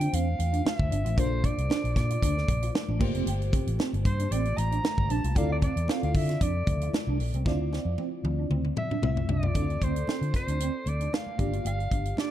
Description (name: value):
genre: polished 1980s jazz-funk pop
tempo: 115 BPM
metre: 4/4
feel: swing 54% on 16ths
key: D minor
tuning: A4 = 440 Hz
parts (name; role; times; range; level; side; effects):
- warm soprano saxophone; melody; 0.0-12.3 s; C5 to Bb5; -34 LUFS; right 1 dB; digital delay
- bell-like FM electric piano; accompaniment; 0.0-12.3 s; A3 to E5; -36 LUFS; left 2 dB; lush chorus
- electric guitar at the edge of break-up; riff; 0.0-12.3 s; Bb3 to G4; -36 LUFS; right 6 dB; ensemble chorus
- vintage muted fingered electric bass; bass; 0.0-12.2 s; F1 to D3; -28 LUFS; equal; none
- tight funk drum kit; drums; 0.0-12.3 s; crash cymbal, hi-hat, kick drum, snare drum, toms; -29 LUFS; equal; none
- congas; percussion; 0.4-12.3 s; none; -42 LUFS; left 4 dB; none
room: studio reverb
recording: dark, warm production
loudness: -25 LUFS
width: side -12 dB against mid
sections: 0.0-7.5 A section; 7.5-9.6 B section; 9.6-12.3 C section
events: drum fill 7.5-9.6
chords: 0.0 Dm9; 1.2 Bbmaj9; 3.0 Gm11; 5.4 Dm9; 9.6 Dm7; 11.4 Gm7